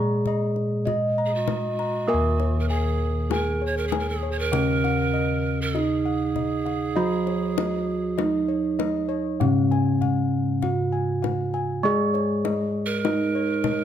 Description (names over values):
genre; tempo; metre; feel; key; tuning
Javanese gamelan; 49 BPM; 4/4; straight; Eb slendro; A4 = 440 Hz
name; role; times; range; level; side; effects
gamelan-type bronze metallophone; melody; 0.0-13.8 s; Db4-25c to Eb5; -26 LUFS; right 1 dB; none
gamelan-type bronze metallophone; accompaniment; 0.0-13.8 s; Db3-25c to Bb3; -28 LUFS; right 2 dB; none
gamelan-type bossed gongs; arpeggios; 0.0-13.8 s; Db5-25c to Bb5; -32 LUFS; left 7 dB; none
gamelan-type bossed gongs; bass; 0.0-13.8 s; Eb2 to Bb4; -28 LUFS; left 1 dB; none
kendang; percussion; 0.3-13.8 s; none; -31 LUFS; left 9 dB; none
breathy pan flute; second line; 1.3-13.8 s; Gb4-44c to Db5-29c; -30 LUFS; right 6 dB; none
room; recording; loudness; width
light reverb; close, detailed microphones; -22 LUFS; side -10 dB against mid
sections
0.0-13.8 A section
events
none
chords
none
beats
0.87 | 2.09 3.31 4.53 5.75 | 6.96 8.18 9.40 10.62 | 11.84 13.05